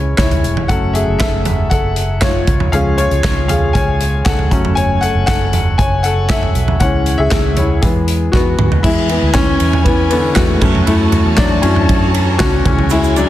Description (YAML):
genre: piano-driven pop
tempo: 118 BPM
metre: 4/4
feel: straight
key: F# minor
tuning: A4 = 438 Hz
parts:
  - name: bright upright piano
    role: accompaniment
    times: 0.0-13.3 s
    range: D3 to G#5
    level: -16 LUFS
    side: left 2 dB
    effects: none
  - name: vintage muted fingered electric bass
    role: bass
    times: 0.0-13.3 s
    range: E1 to F#2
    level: -17 LUFS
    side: equal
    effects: none
  - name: modern studio drum kit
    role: drums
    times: 0.2-13.3 s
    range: crash cymbal, handclaps, hi-hat, kick drum, ride cymbal, snare drum, toms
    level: -16 LUFS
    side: right 1 dB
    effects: none
  - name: warm studio string section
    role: sustained chords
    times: 8.8-13.3 s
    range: E4 to A5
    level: -23 LUFS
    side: right 1 dB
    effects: none
  - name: egg shaker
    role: percussion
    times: 12.9-13.3 s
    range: none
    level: -30 LUFS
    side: right 12 dB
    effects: none
room: moderate concert hall reverb, RT60 2.0 s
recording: dense, heavily limited modern master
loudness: -11 LUFS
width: side -13 dB against mid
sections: 0.0-8.8 A section; 8.8-13.3 B section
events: upright piano solo 0.0-8.8, 8.8-13.3; drum fill 8.3-8.8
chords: 0.0 C#m; 0.7 F#m; 2.5 C#; 4.5 F#m; 6.8 C#m; 7.8 E; 10.6 F#m; 12.7 C#m